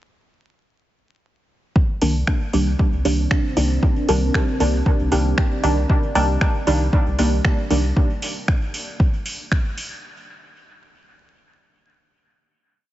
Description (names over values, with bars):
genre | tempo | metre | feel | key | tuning
dub techno | 116 BPM | 4/4 | swing 56% on 16ths | C minor | A4 = 440 Hz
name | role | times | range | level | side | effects
deep dark ambient pad | sustained chords | 3.0-7.9 s | C4 to D5 | -29 LUFS | equal | chorus, built-in reverb, sidechain pumping
electronic kick drum | drums | 1.8-9.6 s | none | -18 LUFS | equal | studio reverb
filtered dub chord stab | stabs | 2.0-7.8 s | Eb3 to D4 | -22 LUFS | right 1 dB | chorus, phaser, sidechain pumping, dub echo
soft dub sub bass | bass | 2.0-7.9 s | C2 | -20 LUFS | equal | sidechain pumping
soft vintage rhythm box | drums | 2.0-9.9 s | finger snaps, hi-hat | -28 LUFS | right 1 dB | studio reverb
room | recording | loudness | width
light reverb | heavily compressed radio sound, multiband compression, vinyl crackle, nothing above 7.8 kHz | -17 LUFS | side -14 dB against mid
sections
1.8-10.0 groove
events
none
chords
1.8 Cm9